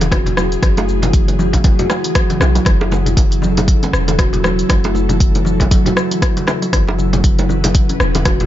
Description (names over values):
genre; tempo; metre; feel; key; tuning
afro house; 118 BPM; 4/4; swing 58% on 16ths; F# minor; A4 = 438 Hz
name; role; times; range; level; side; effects
ethereal airy pad; sustained chords; 0.0-8.5 s; F#3 to B4; -22 LUFS; left 2 dB; ensemble chorus, built-in reverb, sidechain pumping
kalimba; arpeggios; 0.0-8.3 s; C#3 to F#4; -20 LUFS; right 1 dB; sidechain pumping, tape echo
warm 808-style bass; bass; 0.0-8.5 s; E1 to B1; -19 LUFS; equal; sidechain pumping
deep house drum kit; drums; 0.0-8.5 s; hi-hat, rim click, shaker; -21 LUFS; left 2 dB; none
bongos; percussion; 0.0-8.4 s; none; -25 LUFS; right 4 dB; none
congas; percussion; 0.0-8.5 s; none; -24 LUFS; left 2 dB; none
electronic kick drum; drums; 0.1-8.4 s; none; -14 LUFS; equal; none
room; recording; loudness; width
little or no reverb; nothing above 7.5 kHz; -12 LUFS; side -12 dB against mid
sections
0.0-8.5 A section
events
none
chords
0.0 F#m7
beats
0.12 | 0.63 1.14 1.65 2.15 | 2.66 3.17 3.68 4.19 | 4.70 5.20 5.71 6.22 | 6.73 7.24 7.75 8.26